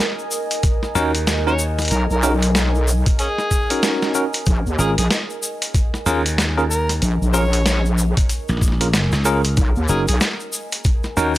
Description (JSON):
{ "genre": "glitch hop", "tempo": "94 BPM", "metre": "4/4", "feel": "swing 61% on 16ths", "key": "unclear", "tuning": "A4 = 440 Hz", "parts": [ { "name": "deep dark ambient pad", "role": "texture", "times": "0.0-11.4 s", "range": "Bb4 to Ab5", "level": "-29 LUFS", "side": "right 2 dB", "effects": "chorus, built-in reverb, sidechain pumping" }, { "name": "tube shaker", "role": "percussion", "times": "0.2-11.4 s", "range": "none", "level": "-29 LUFS", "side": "left 2 dB", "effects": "none" }, { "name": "boom bap sampler-style drum kit", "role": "drums", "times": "0.5-11.1 s", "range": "hi-hat, snare drum", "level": "-22 LUFS", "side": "equal", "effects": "small room ambience" }, { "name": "electronic kick drum", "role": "drums", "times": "0.6-11.0 s", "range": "none", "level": "-18 LUFS", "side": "equal", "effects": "small room ambience" }, { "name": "barky tine electric piano", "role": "stabs", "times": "1.0-11.3 s", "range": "C#4 to A#4", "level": "-23 LUFS", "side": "equal", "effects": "fast stereo tremolo, vintage 12-bit sampler grit, sidechain pumping, analog delay" }, { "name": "slap bass", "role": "bass", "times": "1.0-11.4 s", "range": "F#1 to D#2", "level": "-20 LUFS", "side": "equal", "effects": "none" }, { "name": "overdriven harmonica", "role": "melody", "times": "1.5-10.2 s", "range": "C#4 to C#5", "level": "-27 LUFS", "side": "equal", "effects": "analog delay" }, { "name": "wobble bass", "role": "bass", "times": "1.9-10.2 s", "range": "Bb1 to Eb2", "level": "-18 LUFS", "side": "equal", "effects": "chorus, tube saturation" } ], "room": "little or no reverb", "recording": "dry, gritty hardware recording", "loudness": "-16 LUFS", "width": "side -15 dB against mid", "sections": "0.0-11.4 A section", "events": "none", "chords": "0.0 Bmaj9; 4.5 Bbm7; 9.6 Bmaj9", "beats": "0.00 0.64 1.27 | 1.91 2.55 3.19 3.83 | 4.47 5.11 5.74 6.38 | 7.02 7.66 8.30 8.94 | 9.57 10.21 10.85" }